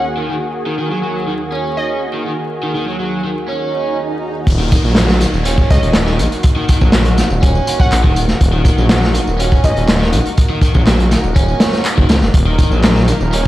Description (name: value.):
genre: breakbeat, breaks.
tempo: 122 BPM.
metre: 4/4.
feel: straight.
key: Eb minor.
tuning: A4 = 437 Hz.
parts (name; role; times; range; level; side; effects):
glassy wavetable pluck; melody; 0.0-1.9, 5.7-9.8 s; Eb5 to Gb5; -24 LUFS; left 1 dB; chorus, old record sound, dub echo.
lush unison pad; sustained chords; 0.0-13.5 s; Eb2 to Bb4; -23 LUFS; equal; chorus, sidechain pumping.
overdriven electric guitar; riff; 0.0-13.5 s; Eb3 to Db4; -20 LUFS; right 1 dB; low-pass filter, dub echo.
swell and downlifter; sound effects; 3.8-8.4 s; none; -28 LUFS; right 2 dB; none.
detuned saw bass; bass; 4.5-13.5 s; Eb1 to Db2; -15 LUFS; equal; tube saturation.
crunchy breakbeat drum kit; drums; 4.5-13.5 s; hi-hat, kick drum, snare drum; -13 LUFS; equal; none.
electronic tambourine and handclaps; drums; 4.5-13.5 s; none; -25 LUFS; equal; low-pass filter on perc, low-pass filter on snare, low-pass filter on room.
room: light reverb, studio reverb.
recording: played on a big sound system in a bare room, stone room reverb, vinyl crackle.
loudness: -12 LUFS.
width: side -15 dB against mid.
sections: 0.0-4.5 A section; 4.5-13.5 B section.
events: swell 3.8-4.5; drop 4.5-13.5.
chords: 0.0 Ebm.